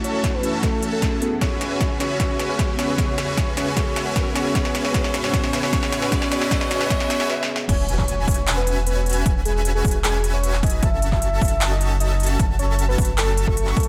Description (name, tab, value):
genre	future bass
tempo	153 BPM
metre	4/4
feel	half-time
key	E major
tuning	A4 = 445 Hz
part	soft octave-layered synth lead	melody	0.0-13.9 s	G#4 to E5	-30 LUFS	equal	chorus, sidechain pumping, dub echo
part	glassy digital keys	accompaniment	0.0-7.7 s	A3 to G#4	-30 LUFS	equal	chorus, sidechain pumping
part	ethereal airy pad	sustained chords	0.0-7.3 s	E2 to F#4	-37 LUFS	equal	ensemble chorus, built-in reverb, sidechain pumping
part	supersaw chords	riff	0.0-13.8 s	C#4 to C#6	-30 LUFS	equal	ensemble chorus, sidechain pumping
part	big-room dance drum kit	drums	0.0-13.9 s	crash cymbal, handclaps, hi-hat, snare drum	-29 LUFS	equal	overdrive, high-pass filter on snare, high-pass filter on hats, high-pass filter on cymbals, high-pass filter on room
part	riser and impact	sound effects	0.0-9.3 s	none	-36 LUFS	equal	none
part	electronic kick drum	drums	0.2-13.8 s	none	-25 LUFS	equal	overdrive
part	airy dreamy lead	arpeggios	7.7-13.8 s	G#5 to C#6	-35 LUFS	equal	chorus, sidechain pumping
part	saturated sub bass	bass	7.7-13.7 s	E1 to F#1	-24 LUFS	equal	sidechain pumping
room	light reverb, digital ambience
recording	none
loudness	-21 LUFS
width	mono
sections	0.0-7.7 A section; 7.7-13.9 B section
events	build-up 0.0-7.7; drum fill 0.0-7.3, 7.3-7.7; stop 7.3-7.7; drop 7.7-13.9; impact 7.7-9.3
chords	0.0 F#m7; 1.2 E69; 4.6 Amaj9; 7.7 E69; 10.8 F#m7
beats	0.24 0.63 1.02 | 1.41 1.81 2.20 2.59 | 2.98 3.38 3.77 4.16 | 4.55 4.94 5.34 5.73 | 6.12 6.51 6.91 7.30 | 7.69 8.08 8.47 8.87 | 9.26 9.65 10.04 10.43 | 10.83 11.22 11.61 12.00 | 12.39 12.79 13.18 13.57